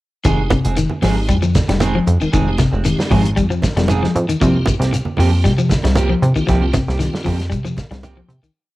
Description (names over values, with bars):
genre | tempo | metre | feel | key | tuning
afrobeat | 116 BPM | 4/4 | straight | F minor | A4 = 442 Hz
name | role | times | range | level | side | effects
tonewheel organ | accompaniment | 0.2-8.5 s | Ab3 to G5 | -26 LUFS | equal | overdrive, chorus vibrato, slow rotary speaker, cassette tape
electric guitar at the edge of break-up | arpeggios | 0.2-8.5 s | C3 to G3 | -20 LUFS | left 3 dB | cassette tape
clean electric guitar | stabs | 0.2-8.5 s | Eb3 to Ab4 | -24 LUFS | right 5 dB | cassette tape
plucky analog bass | bass | 0.2-8.5 s | F1 to C3 | -18 LUFS | equal | none
warm soul drum kit | drums | 0.2-8.6 s | hi-hat, kick drum, snare drum | -21 LUFS | equal | cassette tape
congas | percussion | 0.2-8.4 s | none | -23 LUFS | right 3 dB | none
shekere | percussion | 0.2-8.6 s | none | -28 LUFS | left 2 dB | none
room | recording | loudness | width
small room ambience | home recording on cassette | -14 LUFS | side -17 dB against mid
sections
0.2-8.6 groove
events
fade-out 6.5-8.6; tonewheel organ fill 7.5-8.6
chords
0.2 Fm7; 4.4 C7sus4